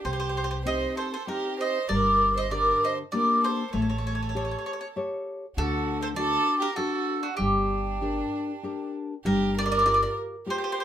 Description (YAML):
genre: italian folk, Italian serenade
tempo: 98 BPM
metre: 3/4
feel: straight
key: G harmonic minor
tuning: A4 = 441 Hz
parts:
  - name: mandolin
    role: melody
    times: 0.0-10.8 s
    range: F#4 to Eb5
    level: -26 LUFS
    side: equal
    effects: none
  - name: warm violin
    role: second line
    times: 0.0-10.8 s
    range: D4 to C5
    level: -32 LUFS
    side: right 5 dB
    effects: none
  - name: nylon-string guitar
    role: accompaniment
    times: 0.0-10.8 s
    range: C3 to C#5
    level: -30 LUFS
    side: left 3 dB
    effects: none
  - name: upright bass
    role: bass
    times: 0.0-10.0 s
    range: G1 to D2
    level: -32 LUFS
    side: equal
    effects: none
room: wet studio ambience, RT60 0.5 s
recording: minimal, uncompressed stereo recording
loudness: -24 LUFS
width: side -10 dB against mid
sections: 0.0-9.3 A section; 9.3-10.8 B section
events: none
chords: 0.1 Cm; 1.9 Gm; 3.8 A7; 5.6 D; 7.4 Gm; 9.3 Gm7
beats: | 0.06 0.67 1.29 | 1.91 2.53 3.14 | 3.75 4.36 4.96 | 5.57 6.17 6.78 | 7.39 8.00 8.63 | 9.25 9.86 10.47